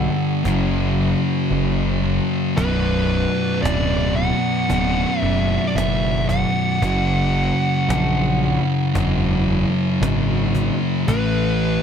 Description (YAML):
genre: stoner and doom metal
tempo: 56 BPM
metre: 4/4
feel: straight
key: B minor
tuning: A4 = 440 Hz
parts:
  - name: fuzz lead guitar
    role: melody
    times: 0.0-11.8 s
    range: B4 to F#5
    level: -24 LUFS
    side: equal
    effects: distortion, ping-pong delay
  - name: percussive tonewheel organ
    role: sustained chords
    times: 0.0-11.8 s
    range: F#3 to D5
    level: -35 LUFS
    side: right 4 dB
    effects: overdrive, slow rotary speaker
  - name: thick fuzz guitar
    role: riff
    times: 0.0-11.8 s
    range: B1 to A3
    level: -21 LUFS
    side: left 7 dB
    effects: distortion
  - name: thick fuzz guitar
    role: riff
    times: 0.0-11.8 s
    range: B1 to A3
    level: -24 LUFS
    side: right 12 dB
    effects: distortion
  - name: fuzz picked electric bass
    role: bass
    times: 0.0-11.8 s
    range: B0 to A#1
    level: -23 LUFS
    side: equal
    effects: overdrive
  - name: cajon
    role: drums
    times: 0.5-11.3 s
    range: none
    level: -25 LUFS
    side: right 1 dB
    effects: none
room: light reverb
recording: dark, warm production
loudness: -17 LUFS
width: side -8 dB against mid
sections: 0.0-11.8 A section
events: kick and snare drop out 1.5-2.6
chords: 0.5 F#5; 2.6 Bm; 6.8 F#; 11.1 A5